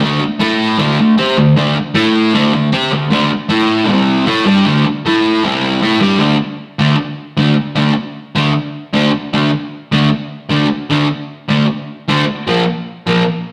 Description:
rock; 154 BPM; 4/4; straight; A4 = 441 Hz
fuzz guitar; solo; 0.0-13.2 s; Bb2 to C5; -14 LUFS; equal; distortion
wet stone room reverb, RT60 1.3 s; rough rehearsal-room recording, warm saturation; -14 LUFS; mono
0.0-6.2 A section; 6.2-13.5 B section
0.0 D5; 0.4 A5; 0.8 D5; 2.0 A5; 2.3 D5; 3.5 A5; 3.9 C5; 4.3 D5; 5.0 A5; 5.4 C5; 5.8 D5; 12.5 Bb5

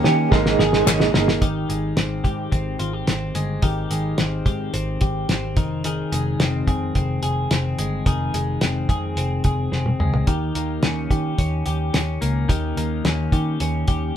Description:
jangly indie pop; 108 BPM; 4/4; straight; Ab major; A4 = 441 Hz
electric guitar through a small old amp; accompaniment; 0.0-1.4 s; Ab3 to Ab4; -20 LUFS; right 6 dB; tremolo
twelve-string electric guitar; arpeggios; 0.0-14.2 s; Eb3 to Ab4; -25 LUFS; left 3 dB
vintage muted picked electric bass; bass; 0.0-14.1 s; F1 to Eb3; -24 LUFS; equal
cloth-damped thuddy drum kit; drums; 0.0-14.0 s; hi-hat, kick drum, snare drum, toms; -21 LUFS; equal
group handclap; percussion; 0.9-1.0 s; -24 LUFS; left 5 dB
moderate studio ambience, RT60 0.4 s; band playing live in one room; -19 LUFS; side -10 dB against mid
0.0-1.4 A section; 1.4-14.2 B section
drum fill 0.0-1.4, 9.7-10.3
0.3 Absus2; 1.4 Abmaj7; 5.6 Fm7; 10.3 Eb7

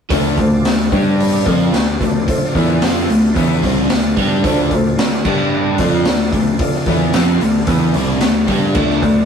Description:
classic rock; 111 BPM; 4/4; straight; D dorian; A4 = 440 Hz
warm upright piano; accompaniment; 0.1-9.3 s; D4 to D5; -24 LUFS; left 3 dB
overdriven tonewheel organ; sustained chords; 0.1-9.3 s; A3 to D5; -27 LUFS; equal; slow rotary speaker, chorus vibrato
overdriven semi-hollow guitar; riff; 0.1-9.2 s; C3 to G4; -19 LUFS; right 4 dB; phaser
raw garage guitar; riff; 0.1-9.2 s; C3 to G4; -19 LUFS; left 5 dB; overdrive
growling picked electric bass; bass; 0.1-9.3 s; C2 to G2; -20 LUFS; equal; overdrive
raw garage drum kit; drums; 0.1-9.2 s; crash cymbal, hi-hat, kick drum, snare drum; -18 LUFS; right 1 dB
wet studio reverb, RT60 0.6 s; rough rehearsal-room recording, warm saturation; -13 LUFS; side -7 dB against mid
0.1-9.3 A section
0.1 Dm; 0.9 G5; 1.5 Dm; 5.3 G5; 5.8 Dm

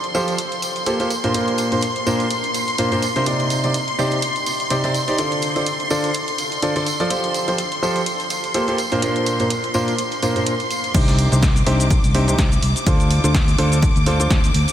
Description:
piano house; 125 BPM; 4/4; swing 56% on 16ths; C dorian; A4 = 442 Hz
string machine, violins; sustained chords; 0.0-14.7 s; C6 to D6; -24 LUFS; equal; ensemble chorus, sidechain pumping
punchy analog drum machine; drums; 0.0-14.7 s; cabasa, crash cymbal, hi-hat, snare drum; -26 LUFS; right 1 dB
clear concert grand piano; riff; 0.1-14.4 s; Bb2 to D5; -20 LUFS; equal; sidechain pumping, low-pass filter, analog delay
tambourine; percussion; 0.1-10.9 s; -31 LUFS; right 2 dB
fingered electric bass; bass; 10.9-14.6 s; C2 to D2; -18 LUFS; equal; sidechain pumping
electronic kick drum; drums; 10.9-14.4 s; -18 LUFS; equal
moderate huge ambient reverb, RT60 8.2 s; dreamy mix soaked in reverb; -17 LUFS; side -11 dB against mid
0.0-10.9 A section; 10.9-14.7 B section
drop 10.9-14.7
0.0 Fadd9; 1.1 Bbadd9; 3.3 Cmadd9; 5.2 Dm7; 7.1 Fadd9; 8.8 Bbadd9; 10.9 Cmadd9; 12.9 Dm7

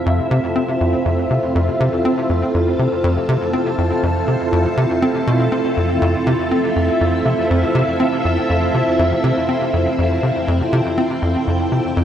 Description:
ambient, sequencer-driven space music; 121 BPM; 4/4; straight; F major; A4 = 440 Hz
string machine, full ensemble; sustained chords; 0.0-12.0 s; C4 to A5; -18 LUFS; equal; ensemble chorus
tight sequencer bass; riff; 0.1-12.0 s; F2 to C4; -19 LUFS; equal; wide subtle chorus, tape echo
wet concert hall reverb, RT60 2.2 s; -15 LUFS; side -10 dB against mid
0.0-12.0 A section
0.0 Fmaj7

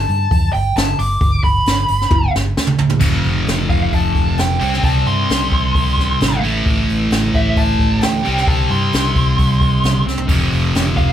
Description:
blues rock power trio and southern rock; 132 BPM; 4/4; straight; A4 = 440 Hz
fuzz lead guitar; melody; 0.0-11.1 s; E5 to D6; -20 LUFS; equal; distortion
vintage muted fingered electric bass; bass; 0.0-11.1 s; F1 to G2; -20 LUFS; equal
jazz brush drum kit; drums; 0.1-11.1 s; crash cymbal, hi-hat, kick drum, snare drum, toms; -18 LUFS; equal
sludgy distorted guitar; riff; 3.0-11.1 s; F2 to C4; -17 LUFS; equal; overdrive
light reverb; band playing live in one room; -13 LUFS; side -10 dB against mid
0.0-3.0 A section; 3.0-11.1 B section
lead electric guitar solo 0.0-3.0; drum fill 2.1-3.0, 10.1
0.0 G; 3.0 F; 4.6 C5; 6.4 A5; 8.2 C5; 10.3 F5

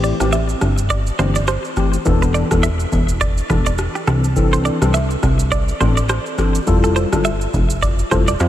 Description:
afrobeats; 104 BPM; 4/4; swing 58% on 16ths; A minor; A4 = 440 Hz
tine electric piano; accompaniment; 0.0-8.3 s; E3 to A4; -21 LUFS; left 3 dB; ensemble chorus
direct-recorded clean electric guitar; riff; 0.0-8.4 s; G4 to E5; -23 LUFS; right 4 dB; analog chorus, ping-pong delay
plucky analog bass; bass; 0.0-8.5 s; E1 to F2; -18 LUFS; equal
booming analog drum machine; drums; 0.0-8.5 s; kick drum, rim click, shaker; -20 LUFS; equal
moderate huge ambient reverb, RT60 4.8 s; dreamy mix soaked in reverb; -15 LUFS; side -12 dB against mid
0.0-8.5 A section
0.0 Am7; 2.1 E7sus4; 4.1 C69; 6.7 Fmaj9

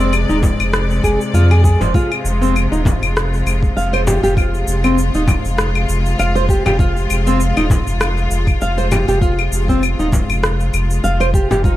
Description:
organic downtempo; 99 BPM; 4/4; swing 55% on 16ths; F dorian; A4 = 440 Hz
clear studio string section; sustained chords; 0.0-11.8 s; C3 to D5; -23 LUFS; left 2 dB; sidechain pumping
nylon-string guitar; arpeggios; 0.0-11.8 s; C4 to F5; -19 LUFS; equal; low-pass filter, tape echo
warm sub bass; bass; 0.0-11.8 s; Eb1 to F2; -17 LUFS; equal
electronic claves, cabasa and rim click; drums; 0.1-11.8 s; -22 LUFS; left 3 dB
electronic kick drum; drums; 0.4-11.8 s; -16 LUFS; equal
frame drum; percussion; 0.4-11.6 s; -22 LUFS; left 1 dB
light reverb, studio ambience; -13 LUFS; side -14 dB against mid
0.0-11.8 A section
0.0 Fm

